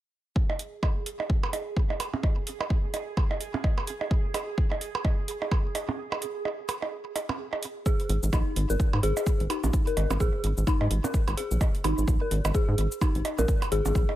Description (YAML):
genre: minimal techno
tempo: 128 BPM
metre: 4/4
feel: swing 58% on 16ths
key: unclear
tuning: A4 = 440 Hz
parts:
  - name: electronic kick drum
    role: drums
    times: 0.4-14.1 s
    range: none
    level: -25 LUFS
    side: equal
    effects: none
  - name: pulsing gated texture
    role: texture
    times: 0.4-7.9 s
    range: G#4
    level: -39 LUFS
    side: right 5 dB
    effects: chorus, built-in reverb, sidechain pumping
  - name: percussion blips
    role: percussion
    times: 0.5-14.2 s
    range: none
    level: -33 LUFS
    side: right 4 dB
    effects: overdrive, digital delay
  - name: electronic hi-hat and cabasa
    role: drums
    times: 0.6-14.1 s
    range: none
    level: -38 LUFS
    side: right 1 dB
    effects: overdrive
  - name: dark detuned synth bell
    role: riff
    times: 7.9-13.7 s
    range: D#4 to A#4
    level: -31 LUFS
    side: left 2 dB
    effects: chorus, phaser, sidechain pumping, low-pass filter, digital delay
  - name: rubbery square bass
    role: bass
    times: 8.1-14.0 s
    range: G#1 to G#2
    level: -26 LUFS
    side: equal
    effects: sidechain pumping
room: little or no reverb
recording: none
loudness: -25 LUFS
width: side -14 dB against mid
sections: 0.4-7.9 A section; 7.9-14.2 B section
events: break 6.0-7.9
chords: 0.4 N.C.; 7.9 G#5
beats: | 0.36 0.83 1.30 1.77 | 2.23 2.70 3.17 3.64 | 4.11 4.58 5.05 5.52 | 5.98 6.45 6.92 7.39 | 7.86 8.33 8.80 9.27 | 9.73 10.20 10.67 11.14 | 11.61 12.08 12.55 13.02 | 13.48 13.95